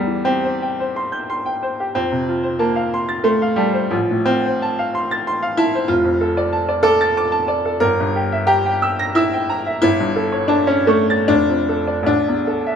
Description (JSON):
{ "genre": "classical, romantic character piece for solo piano", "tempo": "73-96 BPM", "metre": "3/4", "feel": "rubato", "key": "F major, D minor from 5.9 s", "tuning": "A4 = 439 Hz", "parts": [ { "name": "bright upright piano", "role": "solo", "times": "0.0-12.8 s", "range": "F1 to Bb6", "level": "-16 LUFS", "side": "equal", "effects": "none" } ], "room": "moderate recital hall reverb, RT60 1.6 s", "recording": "close, detailed microphones", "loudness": "-16 LUFS", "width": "side -7 dB against mid", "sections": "0.0-12.8 A section", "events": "none", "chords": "0.0 C/E; 2.0 F; 3.9 F/A; 5.9 Dm/F; 7.8 Edim/G; 9.8 A7/G; 11.3 Dm/F; 12.1 A5" }